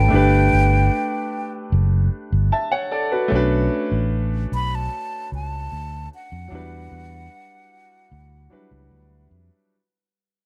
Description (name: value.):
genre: lush 1970s-style soul.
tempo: 75 BPM.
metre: 4/4.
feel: straight.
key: E dorian.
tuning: A4 = 440 Hz.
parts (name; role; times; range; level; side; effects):
breathy mellow silver concert flute; melody; 0.0-9.3 s; F#5 to B5; -27 LUFS; equal; none.
clear concert grand piano; accompaniment; 0.0-9.7 s; F#3 to A5; -25 LUFS; equal; none.
fingered electric bass; bass; 0.0-9.5 s; F#1 to F2; -22 LUFS; equal; none.
room: light reverb.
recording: none.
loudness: -21 LUFS.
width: mono.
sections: 0.0-9.7 A section.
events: fade-out 0.0-9.7.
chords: 0.1 Gmaj7; 3.3 Bm9; 6.5 Em9.